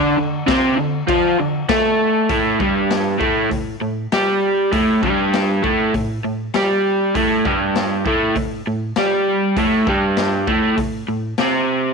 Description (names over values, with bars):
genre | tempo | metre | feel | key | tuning
garage rock duo or trio | 99 BPM | 4/4 | straight | unclear | A4 = 440 Hz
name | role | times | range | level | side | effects
crunchy overdriven guitar | riff | 0.0-11.9 s | G2 to A4 | -16 LUFS | right 1 dB | none
raw garage drum kit | drums | 0.5-11.5 s | crash cymbal, hi-hat, kick drum, snare drum | -25 LUFS | left 4 dB | none
room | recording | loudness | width
light reverb, studio ambience | 1960s-style stereo | -16 LUFS | side -4 dB against mid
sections
0.0-2.3 A section; 2.3-11.9 B section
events
none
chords
0.0 D5; 2.3 Gsus2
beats
0.49 1.09 1.70 | 2.30 2.90 3.51 4.12 | 4.72 5.33 5.94 6.54 | 7.15 7.76 8.37 8.97 | 9.58 10.19 10.79 11.40